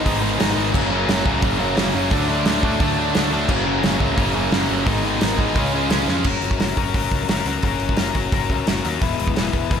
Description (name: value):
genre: punk rock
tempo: 174 BPM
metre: 4/4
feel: straight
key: F# mixolydian from 6.3 s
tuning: A4 = 440 Hz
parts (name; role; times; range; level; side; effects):
- crunchy overdriven guitar; riff; 0.0-9.8 s; F#2 to B4; -22 LUFS; left 8 dB; slapback echo
- heavy high-gain guitar; riff; 0.0-6.3 s; F#2 to D4; -27 LUFS; right 2 dB; distortion
- overdriven electric guitar; riff; 0.0-6.3 s; F#2 to D4; -24 LUFS; right 9 dB; slapback echo
- fuzz picked electric bass; bass; 0.0-9.8 s; E1 to E#2; -26 LUFS; equal; overdrive
- loose indie drum kit; drums; 0.1-9.8 s; crash cymbal, hi-hat, kick drum, snare drum; -22 LUFS; right 1 dB; none
room: moderate recital hall reverb, RT60 1.4 s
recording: big arena sound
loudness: -17 LUFS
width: side -7 dB against mid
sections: 0.0-6.3 A section; 6.3-9.8 B section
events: drum fill 6.1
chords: 0.0 G#m; 0.7 F#; 2.1 D; 3.5 F#; 4.9 G#m; 5.6 C#; 6.3 F#; 9.0 E